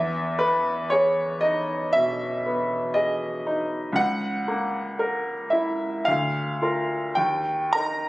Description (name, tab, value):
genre	classical, romantic nocturne for solo piano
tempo	52-60 BPM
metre	4/4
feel	rubato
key	unclear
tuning	A4 = 439 Hz
part	bright baby grand piano	solo	0.0-8.1 s	C#2 to A#5	-22 LUFS	equal	none
room	light reverb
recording	recorded on a phone in the room, club reverb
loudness	-22 LUFS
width	side -18 dB against mid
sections	0.0-8.1 A section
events	none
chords	0.0 Emaj7; 4.0 A#dim/C#; 6.1 A#/D; 7.2 D#